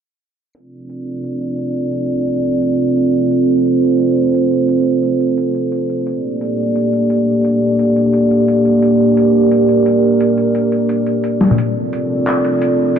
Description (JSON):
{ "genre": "half-time drum and bass", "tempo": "174 BPM", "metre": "4/4", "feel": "swing 59% on 16ths, half-time", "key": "D minor", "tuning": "A4 = 440 Hz", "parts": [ { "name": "boom bap sampler-style drum kit", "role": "drums", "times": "0.5-13.0 s", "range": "handclaps, hi-hat, snare drum, toms", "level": "-18 LUFS", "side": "left 2 dB", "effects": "overdrive" }, { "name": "dark analog pad", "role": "sustained chords", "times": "0.6-13.0 s", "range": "Bb3 to D5", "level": "-13 LUFS", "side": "right 1 dB", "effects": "chorus, vintage 12-bit sampler grit" } ], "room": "wet cathedral reverb, RT60 5.1 s", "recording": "dreamy mix soaked in reverb, low-pass filter", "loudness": "-13 LUFS", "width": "side -8 dB against mid", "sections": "0.5-13.0 A section", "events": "filter sweep 0.5-13.0; drum fill 11.4", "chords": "0.5 Dm7; 6.1 Gmadd9; 11.6 Dm7" }